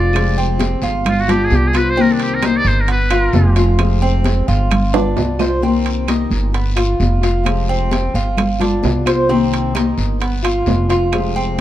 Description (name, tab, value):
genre	latin, Cuban son and guajira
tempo	131 BPM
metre	4/4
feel	straight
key	unclear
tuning	A4 = 440 Hz
part	trumpet with metal mute	melody	0.0-3.5 s	D4 to D5	-20 LUFS	equal	none
part	nylon-string guitar	accompaniment	0.0-11.6 s	C3 to G4	-19 LUFS	left 4 dB	none
part	Cuban tres	arpeggios	0.0-11.6 s	B3 to C5	-22 LUFS	right 2 dB	none
part	upright bass	bass	0.0-11.6 s	F1 to C2	-17 LUFS	equal	none
part	claves	percussion	0.1-11.4 s	none	-32 LUFS	right 5 dB	none
part	congas	percussion	0.1-11.6 s	none	-22 LUFS	equal	none
part	guiro	percussion	0.1-11.6 s	none	-33 LUFS	left 5 dB	none
part	timbales	percussion	0.2-11.6 s	none	-23 LUFS	right 7 dB	none
room	light reverb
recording	dark, warm production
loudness	-13 LUFS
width	side -13 dB against mid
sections	0.0-5.6 A section; 5.6-11.6 B section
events	muted trumpet solo 0.0-5.6; drum fill 4.9-5.6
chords	0.1 Fmadd9; 1.1 G7; 2.0 Cm7; 2.9 G7; 3.8 Fmadd9; 4.7 G7; 5.6 Cm7; 6.5 G7; 7.5 Fmadd9; 8.4 G7; 9.3 Cm7; 10.2 G7